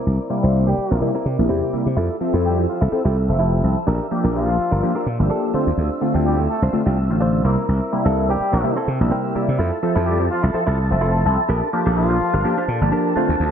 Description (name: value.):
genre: house.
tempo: 126 BPM.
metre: 4/4.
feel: swing 55% on 16ths.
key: F major.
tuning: A4 = 440 Hz.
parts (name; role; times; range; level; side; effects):
string machine, full ensemble; sustained chords; 0.0-13.5 s; A5 to E6; -31 LUFS; equal; ensemble chorus, low-pass filter.
direct-recorded clean electric guitar; riff; 0.0-13.5 s; C4 to G5; -26 LUFS; right 2 dB; low-pass filter.
glassy slap bass; bass; 0.1-13.5 s; F1 to C3; -19 LUFS; equal; low-pass filter.
funky polysynth comp; accompaniment; 0.3-13.3 s; C3 to E5; -22 LUFS; equal; chorus, phaser, low-pass filter.
bright horn section; melody; 0.7-12.6 s; F3 to A4; -26 LUFS; left 1 dB; low-pass filter.
room: moderate lush hall reverb, RT60 2.1 s.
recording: bright 1980s-style digital production.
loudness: -17 LUFS.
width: side -8 dB against mid.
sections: 0.0-13.5 A section.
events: filter sweep 0.0-13.5; clean electric guitar fill 8.9-9.6.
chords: 0.0 C7; 2.0 Fmaj7; 3.9 Bb6; 5.5 Dm7; 7.4 C7; 9.6 Fmaj7; 11.5 Bb6.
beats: | 0.07 0.54 1.02 1.50 | 1.97 2.45 2.92 3.40 | 3.88 4.35 4.83 5.31 | 5.78 6.26 6.73 7.21 | 7.69 8.16 8.64 9.12 | 9.59 10.07 10.54 11.02 | 11.50 11.97 12.45 12.93 | 13.40.